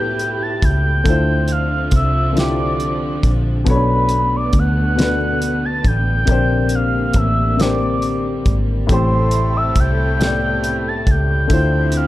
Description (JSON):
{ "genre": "slow six-eight R&B", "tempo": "46 BPM (dotted quarters)", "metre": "6/8", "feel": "straight", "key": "A minor", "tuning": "A4 = 440 Hz", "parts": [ { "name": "soft octave-layered synth lead", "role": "melody", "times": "0.0-12.1 s", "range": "B5 to A6", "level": "-21 LUFS", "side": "right 1 dB", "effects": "chorus, tremolo, slapback echo" }, { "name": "dark baby grand piano", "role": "accompaniment", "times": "0.0-12.1 s", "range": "A2 to D5", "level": "-22 LUFS", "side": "left 4 dB", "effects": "none" }, { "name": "warm studio string section", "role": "sustained chords", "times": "0.0-12.1 s", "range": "C3 to G4", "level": "-26 LUFS", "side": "right 2 dB", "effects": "none" }, { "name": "vintage muted fingered electric bass", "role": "bass", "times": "0.0-12.1 s", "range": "G#1 to D2", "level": "-19 LUFS", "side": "equal", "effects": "none" }, { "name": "cloth-damped thuddy drum kit", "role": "drums", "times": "0.2-12.1 s", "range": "hi-hat, kick drum, snare drum", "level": "-18 LUFS", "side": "equal", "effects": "none" }, { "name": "warm horn section", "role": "stabs", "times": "8.9-12.1 s", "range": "C4 to A4", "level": "-28 LUFS", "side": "equal", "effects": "none" } ], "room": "little or no reverb", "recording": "dark, warm production", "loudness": "-14 LUFS", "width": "side -15 dB against mid", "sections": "0.0-12.1 A section", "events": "none", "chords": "0.0 Am9; 1.1 Dm9; 3.7 Bm7; 6.3 Bb69; 8.9 Am9; 11.5 Dm9" }